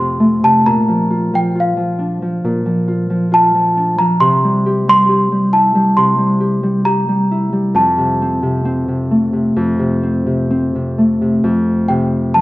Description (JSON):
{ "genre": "children's music, lullaby", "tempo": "67 BPM", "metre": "4/4", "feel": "rubato", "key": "F major", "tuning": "A4 = 440 Hz", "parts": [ { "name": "small celesta", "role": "melody", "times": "0.0-12.4 s", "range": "F5 to C6", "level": "-14 LUFS", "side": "equal", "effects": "none" }, { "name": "Celtic harp", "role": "accompaniment", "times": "0.0-12.4 s", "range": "F2 to G4", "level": "-14 LUFS", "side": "equal", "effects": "none" } ], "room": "wet recital hall reverb, RT60 1.5 s", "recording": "worn, warbling old tape, cassette tape, warbly pitch drift", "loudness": "-12 LUFS", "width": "side -18 dB against mid", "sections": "0.0-11.4 A section", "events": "none", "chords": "0.0 F; 0.7 Bb; 4.2 C7; 7.7 F" }